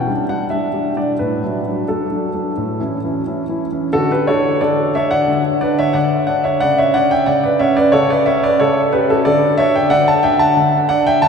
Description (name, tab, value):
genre	classical-period piano sonatina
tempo	90 BPM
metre	4/4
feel	straight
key	D major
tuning	A4 = 441 Hz
part	clear grand piano	solo	0.0-11.3 s	A2 to A5	-13 LUFS	equal	none
room	wet cathedral reverb, RT60 6.1 s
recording	minimal, uncompressed stereo recording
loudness	-14 LUFS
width	side -6 dB against mid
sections	0.0-3.9 A section; 3.9-11.3 B section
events	none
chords	0.0 G5; 1.2 D/A; 2.6 A; 3.9 D; 6.6 A/C#; 9.3 D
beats	0.52 | 1.20 1.88 2.57 3.25 | 3.94 4.61 5.28 5.95 | 6.61 7.27 7.93 8.59 | 9.25 9.91 10.57 11.23